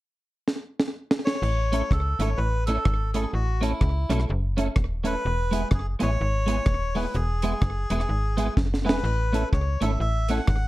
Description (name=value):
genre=ska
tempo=126 BPM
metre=4/4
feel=swing 60% on 8ths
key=A major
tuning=A4 = 440 Hz
part: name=deep reggae drum kit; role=drums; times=0.5-10.6 s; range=crash cymbal, hi-hat, kick drum, rim click, snare drum, splash cymbal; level=-25 LUFS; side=equal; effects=slapback echo
part: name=melodica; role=melody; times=1.2-10.7 s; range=E4 to F#5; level=-30 LUFS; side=left 1 dB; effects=slapback echo, plate reverb
part: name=slap-like FM bass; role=bass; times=1.4-10.7 s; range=D#1 to C#2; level=-25 LUFS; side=equal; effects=none
part: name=clean electric guitar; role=accompaniment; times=1.7-10.4 s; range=G#3 to A4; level=-28 LUFS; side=right 2 dB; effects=ensemble chorus, slapback echo
room=light reverb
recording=dark, warm production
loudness=-22 LUFS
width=side -17 dB against mid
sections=0.0-1.4 A section; 1.4-10.7 B section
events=drum fill 0.5-1.4, 8.6-9.1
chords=0.0 N.C.; 1.4 A; 5.2 E; 9.1 A